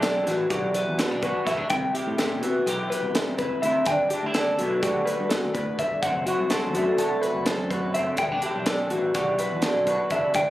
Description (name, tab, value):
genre	math rock and midwest emo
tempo	250 BPM (eighths)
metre	9/8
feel	straight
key	unclear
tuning	A4 = 439 Hz
part	electric guitar through a small old amp	accompaniment	0.0-10.5 s	E2 to G4	-26 LUFS	right 2 dB	analog chorus
part	electric guitar through a small old amp	arpeggios	0.0-10.5 s	F#4 to G5	-26 LUFS	left 3 dB	digital delay
part	growling fingered electric bass	bass	0.0-10.5 s	E1 to C3	-33 LUFS	equal	overdrive
part	crisp fusion drum kit	drums	0.0-10.5 s	hi-hat, kick drum, snare drum	-29 LUFS	equal	none
room	moderate studio reverb, RT60 0.5 s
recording	recorded on a phone in the room, club reverb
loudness	-22 LUFS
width	side -15 dB against mid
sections	0.0-10.5 A section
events	none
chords	0.0 Em11; 1.7 Cmaj7; 3.9 Gmaj9; 6.0 D7/F#; 8.2 Em11